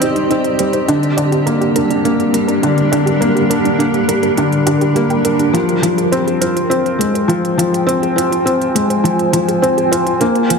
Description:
piano and strings electronica; 103 BPM; 4/4; straight; F dorian; A4 = 440 Hz
granular cloud pad; sustained chords; 0.0-10.6 s; G3 to Ab5; -18 LUFS; right 1 dB; built-in reverb
soft round pluck; arpeggios; 0.0-10.6 s; D4 to G5; -21 LUFS; right 4 dB; chorus, cassette tape, ping-pong delay
felt-muted upright piano; riff; 0.0-10.6 s; D3 to F4; -14 LUFS; left 1 dB; ping-pong delay
electronic hi-hat; drums; 0.0-10.6 s; -23 LUFS; right 4 dB; high-pass filter on hats, studio reverb
moderate huge ambient reverb, RT60 3.9 s; -12 LUFS; side -5 dB against mid
0.0-5.5 A section; 5.5-10.6 B section
build-up 5.5-10.6; filter sweep on ambient pad 5.5-10.6
0.0 Cm; 0.9 Gm; 5.5 Fm

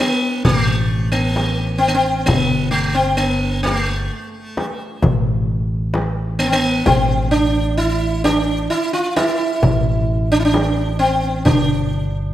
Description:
Turkish makam ensemble; 131 BPM (eighths); 10/8; straight; A makam ussak; A4 = 436 Hz
sitar; melody; 0.0-12.3 s; A3 to F4; -18 LUFS; equal
darbuka; percussion; 0.4-11.8 s; -23 LUFS; left 1 dB
frame drum; percussion; 0.4-11.7 s; -24 LUFS; left 2 dB
upright bass; bass; 0.5-12.3 s; G1 to A1; -20 LUFS; equal
moderate recital hall reverb, RT60 1.7 s; -15 LUFS; side -13 dB against mid
0.0-12.3 A section

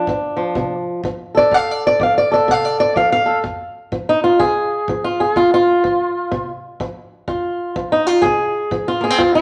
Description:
acoustic country blues, solo or duo; 125 BPM; 4/4; swing 61% on 8ths; F mixolydian; A4 = 440 Hz
fingerpicked swing-style acoustic guitar; melody; 0.0-9.4 s; F2 to F5; -17 LUFS; equal
kick drum; drums; 0.1-9.3 s; -36 LUFS; equal
wet large studio reverb, RT60 1.2 s; -17 LUFS; mono
0.0-3.4 A section; 3.4-9.4 A section
steel-string acoustic guitar solo 0.0-3.4, 3.4-9.4
0.0 F; 3.4 F5

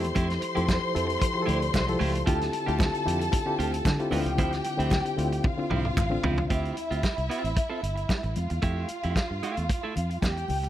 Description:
disco; 113 BPM; 4/4; straight; D minor; A4 = 436 Hz
dark studio string section; second line; 0.0-10.7 s; E4 to C6; -31 LUFS; left 1 dB
clean electric guitar; accompaniment; 0.0-10.7 s; F3 to A4; -36 LUFS; right 5 dB
reed electric piano; accompaniment; 0.0-6.5 s; D3 to F5; -30 LUFS; left 2 dB; fast tremolo
fingered electric bass; bass; 0.0-10.7 s; G1 to D3; -30 LUFS; equal
warm soul drum kit; drums; 0.0-10.7 s; hi-hat, kick drum, snare drum, toms; -28 LUFS; right 1 dB
congas; percussion; 0.2-10.6 s; -38 LUFS; left 5 dB
group handclap; percussion; 0.7-10.4 s; -43 LUFS; right 6 dB
small room ambience; -24 LUFS; side -12 dB against mid
0.0-6.5 A section; 6.5-10.7 B section
reed electric piano fill 0.7-2.3; drum fill 5.4-6.5
0.0 Fmaj9; 2.3 Dm11; 4.1 Dm9; 6.5 Dm11; 8.4 Fmaj9

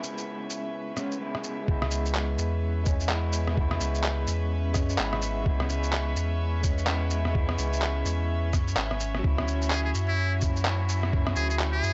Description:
future garage; 127 BPM; 4/4; swing 61% on 16ths; C# minor; A4 = 441 Hz
electric guitar through a small old amp; accompaniment; 0.0-11.9 s; C#3 to E4; -36 LUFS; equal; tremolo, sidechain pumping, tape echo
rich studio string section; sustained chords; 0.0-11.9 s; C#4 to E5; -38 LUFS; equal; sidechain pumping
electronic shaker, rim click and handclaps; drums; 0.0-11.9 s; -34 LUFS; equal; small room reverb
warm sub bass; bass; 1.7-11.9 s; G#1 to F#2; -30 LUFS; equal; tube saturation, sidechain pumping
electronic kick drum; drums; 1.7-11.2 s; -29 LUFS; equal; small room reverb
trumpet with metal mute; melody; 9.7-11.9 s; E4 to G#4; -34 LUFS; equal; tape echo
digital ambience; dry, gritty hardware recording, vinyl crackle, nothing above 7.9 kHz; -27 LUFS; mono
0.0-1.7 A section; 1.7-11.9 B section
0.0 C#m7; 9.2 Dmaj9

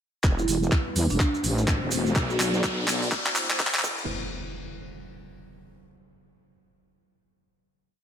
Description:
bass house; 125 BPM; 4/4; swing 61% on 16ths; E minor; A4 = 440 Hz
dark analog pad; sustained chords; 0.7-4.1 s; G3 to D5; -34 LUFS; left 2 dB; chorus, sidechain pumping
wobble bass; bass; 0.2-4.1 s; E1 to E2; -26 LUFS; equal; chorus, tube saturation, sidechain pumping
electronic kick drum; drums; 0.2-4.0 s; -27 LUFS; equal
garage drum kit; drums; 0.2-4.0 s; crash cymbal, handclaps, hi-hat; -28 LUFS; equal; high-pass filter on snare, high-pass filter on hats, high-pass filter on cymbals, high-pass filter on room
maracas; percussion; 0.2-4.1 s; -34 LUFS; right 4 dB
riser and impact; sound effects; 0.9-5.8 s; -34 LUFS; left 1 dB
marimba with soft mallets; melody; 0.4-2.5 s; D4 to F#4; -31 LUFS; right 2 dB; dub echo
light reverb; high-pass filter; -22 LUFS; side -9 dB against mid
0.2-4.1 build; 4.1-6.0 final hit
build-up 0.2-4.1; drum fill 0.2-4.1; filter sweep 0.2-4.1; riser 0.9-4.1
0.2 Em; 1.2 F#dim; 2.2 Bm; 3.1 Am; 3.8 Em; 4.1 N.C.

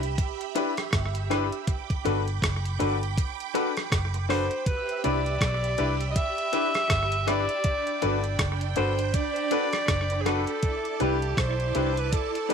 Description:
lovers rock reggae; 80 BPM; 4/4; swing 60% on 16ths; G major; A4 = 440 Hz
string machine, violins; second line; 0.0-12.5 s; D4 to D6; -34 LUFS; right 14 dB; ensemble chorus
vintage muted fingered electric bass; bass; 0.0-12.1 s; F#1 to C2; -28 LUFS; right 1 dB
crisp 8-bit digital drum machine; drums; 0.0-12.5 s; hi-hat, kick drum, rim click; -28 LUFS; equal; slapback echo
clear grand piano; accompaniment; 0.6-12.5 s; D4 to B4; -30 LUFS; left 13 dB
electric guitar at the edge of break-up; stabs; 0.6-12.5 s; D4 to B4; -34 LUFS; right 14 dB; wide subtle chorus
clear alto saxophone; melody; 4.3-12.5 s; G4 to E5; -28 LUFS; equal; tape echo
light reverb; 1960s-style stereo with parts hard left and right; -24 LUFS; side -6 dB against mid
0.0-12.5 A section
0.0 Cmaj9 (rootless); 1.7 Gmaj7; 4.7 Cmaj9; 7.6 Gmaj7; 10.6 Cmaj9

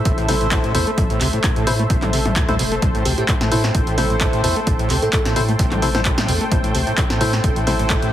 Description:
acid house; 130 BPM; 4/4; swing 54% on 16ths; A minor; A4 = 439 Hz
lush unison pad; sustained chords; 0.0-8.1 s; A3 to G5; -24 LUFS; left 1 dB; chorus, sidechain pumping
overdriven acid bass; riff; 0.1-8.1 s; A2 to A3; -23 LUFS; equal; analog chorus, cassette tape, sidechain pumping, dub echo
saturated sub bass; bass; 0.1-8.1 s; E1 to A2; -24 LUFS; equal; tube saturation, sidechain pumping
electronic kick drum; drums; 0.1-8.0 s; -21 LUFS; equal
punchy analog drum machine; drums; 0.1-8.1 s; handclaps, hi-hat, snare drum, toms; -23 LUFS; equal
percussive organ stab; stabs; 0.3-8.1 s; E4 to C5; -24 LUFS; left 1 dB; wide subtle chorus, cassette tape, dub echo
bell-like FM electric piano; melody; 3.1-5.2 s; G4 to A4; -27 LUFS; right 1 dB; chorus, cassette tape, dub echo
moderate plate reverb, RT60 2.0 s, digital ambience; heavily compressed radio sound, multiband compression; -16 LUFS; side -12 dB against mid
0.0-8.1 A section
0.0 Am

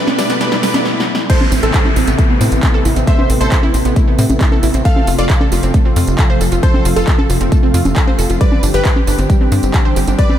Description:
uplifting trance; 135 BPM; 4/4; straight; A minor; A4 = 440 Hz
supersaw stab; melody; 0.0-10.4 s; C4 to F5; -23 LUFS; equal; sidechain pumping, ping-pong delay
analog pluck; arpeggios; 0.0-10.3 s; G3 to C5; -21 LUFS; right 3 dB; chorus, sidechain pumping, ping-pong delay
riser and downlifter; sound effects; 0.0-4.9 s; -23 LUFS; left 1 dB
big-room dance drum kit; drums; 0.1-10.4 s; congas, crash cymbal, handclaps, hi-hat, snare drum, tambourine; -20 LUFS; equal
lush unison pad; sustained chords; 0.2-10.4 s; B2 to B4; -20 LUFS; equal; chorus, sidechain pumping
warm concert grand piano; second line; 1.3-10.4 s; A4 to F5; -25 LUFS; equal; wide subtle chorus, sidechain pumping, ping-pong delay
electronic kick drum; drums; 1.3-10.3 s; -12 LUFS; equal
tight sequencer bass; bass; 1.5-10.2 s; F1 to A2; -15 LUFS; equal; sidechain pumping
moderate church reverb, RT60 2.9 s; dreamy mix soaked in reverb; -11 LUFS; side -11 dB against mid
0.0-1.3 A section; 1.3-10.4 B section
build-up 0.0-1.3; drum fill 0.0-0.9, 0.9-1.3; riser 0.0-0.9; stop 0.9-1.3; drop 1.3-10.4
0.0 Esus4; 1.3 Amadd9; 4.9 F; 8.4 Gsus4

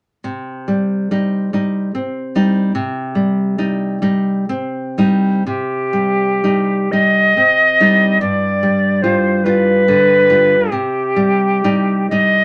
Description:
romantic duo for recorder and classical guitar; 39-50 BPM (dotted quarters); 6/8; rubato; C minor; A4 = 440 Hz
nylon-string guitar; accompaniment; 0.2-12.4 s; G2 to F4; -18 LUFS; equal
mellow alto recorder; melody; 5.5-12.4 s; G4 to Eb5; -16 LUFS; equal
moderate studio ambience, RT60 0.5 s; -15 LUFS; mono
0.2-5.5 A section; 5.5-12.4 B section
0.2 Cm; 8.2 G7; 10.7 Cm

